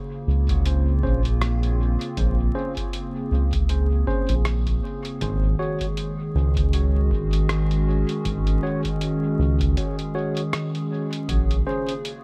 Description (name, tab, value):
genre	ambient dub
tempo	79 BPM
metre	4/4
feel	swing 57% on 16ths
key	Bb minor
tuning	A4 = 440 Hz
part	warbly tape-like pad	sustained chords	0.0-12.2 s	Db3 to Ab4	-30 LUFS	equal	chorus, built-in reverb
part	round analog bass	bass	0.3-11.6 s	Ab1 to Db2	-23 LUFS	equal	none
part	electronic kick drum	drums	0.5-11.5 s	none	-31 LUFS	equal	overdrive
part	lo-fi sampler-style drum kit	drums	0.5-12.2 s	hi-hat, rim click	-35 LUFS	equal	dub echo
part	bright tine electric piano	stabs	1.0-11.9 s	Db4 to Db5	-35 LUFS	equal	dub echo
room	little or no reverb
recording	echo-heavy mix, vinyl crackle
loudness	-23 LUFS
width	mono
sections	0.0-11.3 A section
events	break 9.8-11.3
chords	0.0 Bbm9; 5.2 Ab7sus4; 11.3 Bbm9